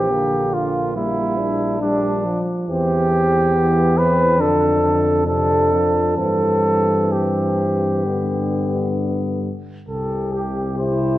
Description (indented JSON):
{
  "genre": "classical, brass quintet",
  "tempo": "63-71 BPM",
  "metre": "4/4",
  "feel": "rubato",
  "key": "C major",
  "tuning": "A4 = 444 Hz",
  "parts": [
    { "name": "mellow flugelhorn", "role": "second line", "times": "0.0-11.2 s", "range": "D4 to C5", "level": "-19 LUFS", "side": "right 1 dB", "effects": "none" },
    { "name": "mellow trombone", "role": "accompaniment", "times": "0.0-11.2 s", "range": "C3 to G3", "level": "-25 LUFS", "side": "equal", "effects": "none" },
    { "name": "warm French horn", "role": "accompaniment", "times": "0.0-11.2 s", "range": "Bb3 to E4", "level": "-24 LUFS", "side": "left 3 dB", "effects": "none" },
    { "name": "mellow tuba", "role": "bass", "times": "0.0-11.2 s", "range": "Bb1 to G2", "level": "-23 LUFS", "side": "equal", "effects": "none" },
    { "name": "dark cornet", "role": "melody", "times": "9.9-11.2 s", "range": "G4", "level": "-28 LUFS", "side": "left 6 dB", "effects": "none" }
  ],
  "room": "moderate concert hall reverb, RT60 2.0 s",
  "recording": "worn, warbling old tape, cassette tape, warbly pitch drift",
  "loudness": "-16 LUFS",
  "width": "side -15 dB against mid",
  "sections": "0.0-9.9 A section; 9.9-11.2 B section",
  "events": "none",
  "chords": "0.0 Gm/Bb; 2.7 C/E; 4.4 Dm7/F; 6.2 C/G; 8.1 G; 9.9 C"
}